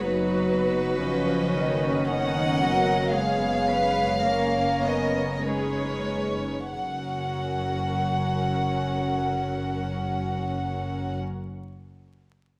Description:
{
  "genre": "classical, slow romantic movement for string orchestra",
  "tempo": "43-62 BPM",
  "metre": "3/4",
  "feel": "rubato",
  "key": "F# major",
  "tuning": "A4 = 442 Hz",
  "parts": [
    { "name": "warm chamber violin section", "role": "melody", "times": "0.0-11.2 s", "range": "B4 to F#5", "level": "-30 LUFS", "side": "equal", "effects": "none" },
    { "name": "warm chamber violin section", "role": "second line", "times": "0.0-11.2 s", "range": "B3 to D#5", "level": "-36 LUFS", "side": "equal", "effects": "none" },
    { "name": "dark chamber viola section", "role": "accompaniment", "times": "0.0-11.2 s", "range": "D#3 to C#4", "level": "-31 LUFS", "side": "equal", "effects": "none" },
    { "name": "warm chamber cello section", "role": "bass", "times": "0.0-11.2 s", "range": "F#2 to B4", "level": "-36 LUFS", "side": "equal", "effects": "none" },
    { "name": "warm chamber double bass section", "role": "bass", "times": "0.0-11.2 s", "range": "F#1", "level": "-34 LUFS", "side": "equal", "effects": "none" }
  ],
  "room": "wet recital hall reverb, RT60 1.6 s",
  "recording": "vinyl crackle",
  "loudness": "-26 LUFS",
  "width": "mono",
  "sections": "0.0-6.8 A section; 6.8-10.4 B section",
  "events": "slowing down 0.0-6.8",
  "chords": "0.0 B/F#; 3.1 C#7/F#; 6.8 F#"
}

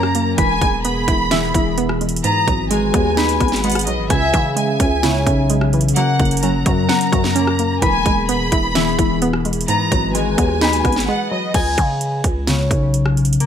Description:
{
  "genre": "hip hop, trap",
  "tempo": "129 BPM",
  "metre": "4/4",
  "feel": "half-time",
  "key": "unclear",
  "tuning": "A4 = 439 Hz",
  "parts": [
    { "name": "warm studio violin section", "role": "second line", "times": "0.0-11.5 s", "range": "D#5 to B5", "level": "-22 LUFS", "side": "right 1 dB", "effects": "tape echo" },
    { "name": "hollow square pluck", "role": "accompaniment", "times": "0.0-11.5 s", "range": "G#2 to F#5", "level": "-22 LUFS", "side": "right 4 dB", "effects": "chorus, low-pass filter" },
    { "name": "dark analog pad", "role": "sustained chords", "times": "0.0-11.5 s", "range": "E3 to E5", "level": "-26 LUFS", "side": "equal", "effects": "chorus" },
    { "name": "concert harp", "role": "arpeggios", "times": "0.0-13.5 s", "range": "C#3 to B5", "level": "-20 LUFS", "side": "left 4 dB", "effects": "low-pass filter, tape echo" },
    { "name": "growling 808-style bass", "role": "bass", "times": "0.0-13.4 s", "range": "E1 to C#3", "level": "-22 LUFS", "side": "equal", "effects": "none" },
    { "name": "trap drum kit", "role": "drums", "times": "0.0-13.5 s", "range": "crash cymbal, hi-hat, kick drum, rim click, snare drum", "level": "-20 LUFS", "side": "right 1 dB", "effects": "overdrive" }
  ],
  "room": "light reverb, digital ambience",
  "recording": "none",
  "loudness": "-14 LUFS",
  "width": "side -8 dB against mid",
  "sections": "0.0-11.5 A section; 11.5-13.5 B section",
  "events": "break 11.1-11.5",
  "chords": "0.4 E; 2.2 G#m7; 4.1 C#m; 6.0 F#; 7.8 E; 9.7 G#m7; 11.5 C#5"
}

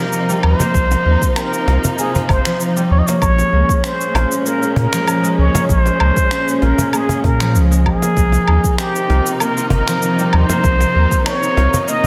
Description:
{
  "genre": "organic downtempo",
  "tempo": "97 BPM",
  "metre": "4/4",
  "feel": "swing 53% on 16ths",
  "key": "unclear",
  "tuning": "A4 = 438 Hz",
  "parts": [
    { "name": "trumpet with plunger mute", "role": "melody", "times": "0.0-12.1 s", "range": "G4 to Eb5", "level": "-21 LUFS", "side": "equal", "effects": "digital delay" },
    { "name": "rich studio string section", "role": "sustained chords", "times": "0.0-12.1 s", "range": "Bb2 to Eb4", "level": "-26 LUFS", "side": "equal", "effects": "sidechain pumping" },
    { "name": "concert harp", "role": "arpeggios", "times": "0.0-12.1 s", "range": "F3 to F4", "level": "-22 LUFS", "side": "equal", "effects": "digital delay" },
    { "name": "electronic shaker, woodblock and finger snaps", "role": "drums", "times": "0.1-12.1 s", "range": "none", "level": "-25 LUFS", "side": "equal", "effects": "overdrive" },
    { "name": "warm sub bass", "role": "bass", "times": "0.4-11.7 s", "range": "G1 to Bb2", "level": "-17 LUFS", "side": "equal", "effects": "sidechain pumping" },
    { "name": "cajon", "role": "percussion", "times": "0.6-12.1 s", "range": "none", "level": "-23 LUFS", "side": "equal", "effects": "none" },
    { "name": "electronic kick drum", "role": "drums", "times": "0.7-11.2 s", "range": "none", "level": "-20 LUFS", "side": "equal", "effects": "overdrive" }
  ],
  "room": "moderate concert hall reverb, RT60 2.3 s",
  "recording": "none",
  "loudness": "-15 LUFS",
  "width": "mono",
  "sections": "0.0-12.1 A section",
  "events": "none",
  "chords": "0.0 Cm; 3.2 Bbm7; 8.2 Cm"
}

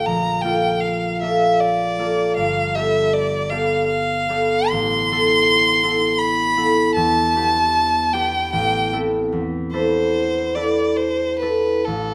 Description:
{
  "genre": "classical, impressionist duo for violin and harp",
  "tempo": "64-84 BPM",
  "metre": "3/4",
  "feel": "rubato",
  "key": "unclear",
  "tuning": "A4 = 438 Hz",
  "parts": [
    { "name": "rich violin", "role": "melody", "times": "0.0-12.1 s", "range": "A4 to C6", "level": "-22 LUFS", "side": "equal", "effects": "none" },
    { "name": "concert harp", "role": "accompaniment", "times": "0.0-12.1 s", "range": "G1 to D5", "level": "-22 LUFS", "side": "equal", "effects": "none" }
  ],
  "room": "moderate recital hall reverb, RT60 1.6 s",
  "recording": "none",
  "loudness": "-19 LUFS",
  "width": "mono",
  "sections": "0.0-12.1 A section",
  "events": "none",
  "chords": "0.1 Bbmaj7; 2.4 G9; 4.7 Amadd9; 7.0 Em7; 8.5 Am9; 9.3 E7sus4"
}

